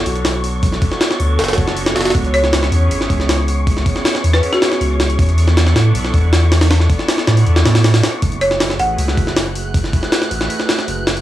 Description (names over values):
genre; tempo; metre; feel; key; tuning
drum and bass, jungle; 158 BPM; 4/4; straight; C# phrygian; A4 = 439 Hz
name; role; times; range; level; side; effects
warbly tape-like pad; sustained chords; 0.0-10.9 s; A3 to D5; -23 LUFS; right 2 dB; chorus, built-in reverb, vintage 12-bit sampler grit
saturated sub bass; bass; 0.0-11.2 s; F#1 to A2; -15 LUFS; equal; tube saturation
wind-like tuned noise texture; texture; 0.0-11.2 s; C#6 to F#6; -27 LUFS; equal; built-in reverb
jungle sampler-style drum kit; drums; 0.1-11.2 s; hi-hat, kick drum, snare drum; -16 LUFS; equal; none
folk marimba with hard mallets; melody; 2.3-4.8, 8.4-9.2 s; F#4 to F#5; -19 LUFS; equal; dub echo
room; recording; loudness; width
digital ambience; dry, gritty hardware recording, studio ambience; -13 LUFS; side -13 dB against mid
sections
0.0-11.2 A section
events
none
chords
0.0 Bm9; 2.1 C#m7; 5.2 E7sus4; 8.2 F#m11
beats
0.25 | 0.63 1.01 1.39 1.77 | 2.15 2.53 2.91 3.29 | 3.67 4.05 4.43 4.81 | 5.19 5.57 5.95 6.33 | 6.71 7.08 7.46 7.84 | 8.22 8.60 8.98 9.36 | 9.74 10.12 10.50 10.88